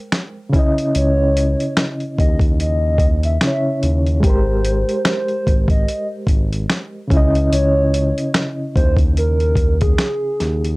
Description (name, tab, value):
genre	lo-fi hip hop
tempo	73 BPM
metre	4/4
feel	swing 57% on 16ths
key	unclear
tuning	A4 = 439 Hz
part	overdriven reed electric piano	accompaniment	0.0-10.8 s	Db3 to G5	-22 LUFS	equal	fast tremolo, cassette tape
part	dusty soul sampler-style drum kit	drums	0.1-10.8 s	finger snaps, hi-hat, kick drum, snare drum	-17 LUFS	equal	none
part	hollow clarinet-like synth lead	melody	1.0-10.8 s	Ab4 to Fb5	-22 LUFS	equal	chorus, tremolo, tape echo
part	smooth synth bass	bass	1.0-10.8 s	Ab1 to Eb2	-18 LUFS	equal	none
room	little or no reverb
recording	dry, gritty hardware recording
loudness	-15 LUFS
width	side -24 dB against mid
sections	0.0-10.8 A section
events	break 0.0-0.9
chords	0.0 Abmaj9; 0.5 Dbmadd9; 4.2 Abmaj9; 7.1 Dbmadd9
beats	0.12 | 0.94 1.76 2.59 3.41 | 4.23 5.05 5.88 6.70 | 7.52 8.34 9.16 9.98